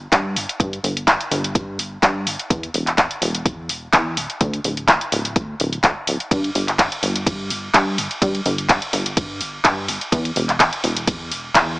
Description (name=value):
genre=filtered disco house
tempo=126 BPM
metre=4/4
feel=swing 54% on 16ths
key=unclear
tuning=A4 = 440 Hz
part: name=plucky analog bass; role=bass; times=0.0-11.8 s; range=D1 to G2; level=-24 LUFS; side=equal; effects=sidechain pumping
part: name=electronic kick drum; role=drums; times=0.1-11.7 s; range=none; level=-22 LUFS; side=equal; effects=none
part: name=house drum kit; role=drums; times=0.1-11.7 s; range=handclaps, hi-hat, ride cymbal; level=-18 LUFS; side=equal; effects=none
room=moderate plate reverb, RT60 2.5 s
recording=small speaker sound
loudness=-17 LUFS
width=side -24 dB against mid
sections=0.0-11.8 A section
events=none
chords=none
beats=0.12 | 0.60 1.08 1.55 2.03 | 2.50 2.98 3.46 3.93 | 4.41 4.89 5.36 5.84 | 6.31 6.79 7.27 7.74 | 8.22 8.70 9.17 9.65 | 10.12 10.60 11.08 11.55